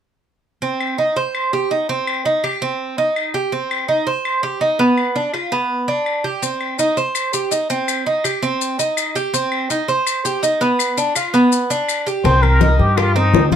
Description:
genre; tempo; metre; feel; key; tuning
latin, Cuban son and guajira; 165 BPM; 4/4; straight; C minor; A4 = 440 Hz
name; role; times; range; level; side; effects
Cuban tres; arpeggios; 0.6-13.6 s; B3 to C5; -18 LUFS; right 2 dB; none
claves; percussion; 0.8-13.2 s; none; -25 LUFS; left 6 dB; none
maracas; percussion; 6.4-12.3 s; none; -25 LUFS; left 8 dB; none
trumpet with plunger mute; melody; 12.2-13.6 s; Eb4 to C5; -17 LUFS; left 1 dB; plate reverb, tape echo
upright bass; bass; 12.2-13.6 s; C2 to G2; -15 LUFS; equal; none
bongos; percussion; 12.3-13.5 s; none; -21 LUFS; left 8 dB; none
congas; percussion; 12.3-13.6 s; none; -20 LUFS; left 4 dB; none
room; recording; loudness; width
moderate studio reverb, RT60 0.5 s; none; -16 LUFS; side -8 dB against mid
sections
0.6-12.2 A section; 12.2-13.6 B section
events
none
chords
0.6 Cm; 5.0 G7; 6.4 Cm; 10.8 G7; 12.2 Cm7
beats
| 0.62 0.99 1.35 1.71 | 2.07 2.44 2.80 3.16 | 3.52 3.89 4.25 4.61 | 4.98 5.34 5.70 6.07 | 6.43 6.79 7.16 7.52 | 7.88 8.25 8.61 8.97 | 9.34 9.70 10.06 10.43 | 10.79 11.16 11.52 11.88 | 12.25 12.61 12.97 13.34

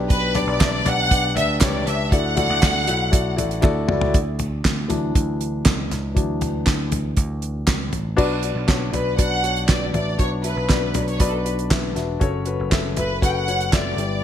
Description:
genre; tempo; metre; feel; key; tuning
piano-driven pop; 119 BPM; 4/4; straight; B minor; A4 = 440 Hz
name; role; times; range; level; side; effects
dark concert grand piano; accompaniment; 0.0-14.2 s; G2 to E5; -25 LUFS; left 4 dB; none
picked electric bass; bass; 0.0-14.2 s; E1 to D2; -25 LUFS; right 1 dB; none
warm studio violin section; melody; 0.1-3.6, 8.9-14.2 s; A4 to G5; -23 LUFS; equal; none
damped 70s drum kit; drums; 0.1-14.1 s; crash cymbal, handclaps, hi-hat, kick drum, snare drum, toms; -20 LUFS; right 1 dB; gated reverb
group handclap; percussion; 0.6-3.7 s; none; -35 LUFS; right 5 dB; none
room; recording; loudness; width
light reverb; bright 1980s-style digital production; -18 LUFS; side -10 dB against mid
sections
0.0-4.1 A section; 4.1-8.2 B section; 8.2-14.2 C section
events
drum fill 3.6-4.1; grand piano solo 4.1-8.2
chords
0.0 G/B; 2.1 Dadd9; 8.2 Bm; 12.2 F#m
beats
| 0.11 0.61 1.11 1.62 | 2.12 2.63 3.13 3.64 | 4.14 4.64 5.15 5.65 | 6.16 6.66 7.17 7.67 | 8.18 8.68 9.19 9.69 | 10.20 10.70 11.20 11.71 | 12.21 12.72 13.22 13.73 | 14.23

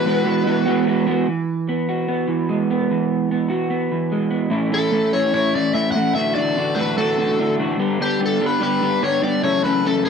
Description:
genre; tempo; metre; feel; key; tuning
rock; 147 BPM; 4/4; straight; unclear; A4 = 440 Hz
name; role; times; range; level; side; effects
biting overdriven guitar; melody; 0.0-0.8, 4.7-10.1 s; G4 to F#5; -21 LUFS; left 2 dB; none
electric guitar through a small old amp; riff; 0.0-10.1 s; F#2 to A4; -19 LUFS; right 1 dB; analog chorus
room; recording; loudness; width
moderate studio reverb, RT60 0.8 s; dark, warm production; -17 LUFS; side -6 dB against mid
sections
0.0-1.3 A section; 1.3-4.5 B section; 4.5-10.1 C section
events
none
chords
0.0 Eadd9; 4.5 A; 6.2 Dadd9/A; 7.8 G; 9.4 F#m7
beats
0.06 0.47 0.87 | 1.27 1.68 2.08 2.49 | 2.89 3.30 3.71 4.11 | 4.52 4.93 5.34 5.75 | 6.16 6.56 6.97 7.38 | 7.79 8.20 8.61 9.02 | 9.43 9.84

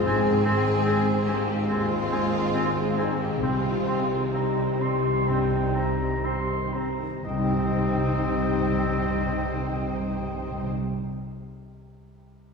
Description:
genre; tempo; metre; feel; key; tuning
cinematic, emotional film score for orchestra; 60-75 BPM; 4/4; rubato; C minor; A4 = 440 Hz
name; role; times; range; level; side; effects
warm studio violin section; melody; 0.0-10.7 s; G3 to C5; -38 LUFS; left 1 dB; none
rich studio violin section; second line; 0.0-10.7 s; C4 to Ab4; -34 LUFS; left 1 dB; none
clear grand piano; accompaniment; 0.0-12.5 s; C2 to G5; -31 LUFS; left 2 dB; none
warm studio viola section; accompaniment; 0.0-10.7 s; C3 to Eb4; -32 LUFS; right 2 dB; none
dark French horn section; sustained chords; 0.0-10.7 s; G3 to G4; -30 LUFS; left 6 dB; none
bright clarinet; second line; 0.1-10.7 s; C4; -34 LUFS; left 2 dB; none
flute section; second line; 0.1-10.7 s; G5 to C6; -37 LUFS; right 1 dB; none
mellow oboe; second line; 0.1-10.7 s; Eb5 to C6; -34 LUFS; equal; none
rich studio cello section; bass; 0.1-10.7 s; Ab2 to C3; -31 LUFS; right 2 dB; none
rich studio double bass section; bass; 0.1-10.7 s; Ab1 to C2; -32 LUFS; right 3 dB; none
timpani; percussion; 7.2-10.7 s; C3; -32 LUFS; left 1 dB; none
room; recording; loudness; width
wet scoring stage reverb, RT60 2.0 s; heard from further back in the room, small room reverb; -23 LUFS; side -4 dB against mid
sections
0.0-7.2 A section; 7.2-11.1 B section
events
slowing down 0.0-7.2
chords
0.1 Ab; 3.4 Cm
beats
| 0.06 0.86 1.69 2.54 | 3.42 4.34 5.27 6.24 | 7.23 8.21 9.19 10.17

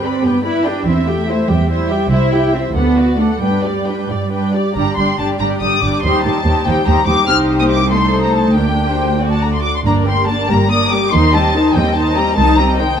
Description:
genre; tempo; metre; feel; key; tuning
quick classical-period movement for string orchestra; 89-99 BPM (dotted quarters); 6/8; rubato; G major, G minor from 4.8 s; A4 = 440 Hz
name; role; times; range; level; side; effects
muted symphonic violin section; melody; 0.0-13.0 s; D5 to F6; -19 LUFS; left 3 dB; none
muted symphonic violin section; second line; 0.0-13.0 s; Eb4 to E5; -21 LUFS; left 3 dB; none
muted symphonic viola section; accompaniment; 0.0-13.0 s; Eb3 to B4; -19 LUFS; equal; none
muted symphonic cello section; bass; 0.0-12.9 s; C2 to E4; -19 LUFS; right 2 dB; none
muted symphonic double bass section; bass; 0.0-12.9 s; G1 to G2; -19 LUFS; right 2 dB; none
room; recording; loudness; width
wet recital hall reverb, RT60 1.7 s; dark, warm production; -12 LUFS; side -8 dB against mid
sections
0.0-4.8 A section; 4.8-13.0 B section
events
none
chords
0.0 G; 0.9 C/E; 2.1 C; 2.8 D; 3.4 G; 6.0 Cm/Eb; 7.3 Cm; 7.9 Adim/C; 8.6 Gm/D; 9.2 D; 9.9 Gm; 11.1 Cm/Eb; 12.4 Cm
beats
0.24 | 0.87 1.50 | 2.12 2.75 | 3.42 4.09 | 4.76 5.41 | 6.04 6.66 | 7.27 7.90 | 8.55 9.21 | 9.86 10.51 | 11.14 11.76 | 12.38

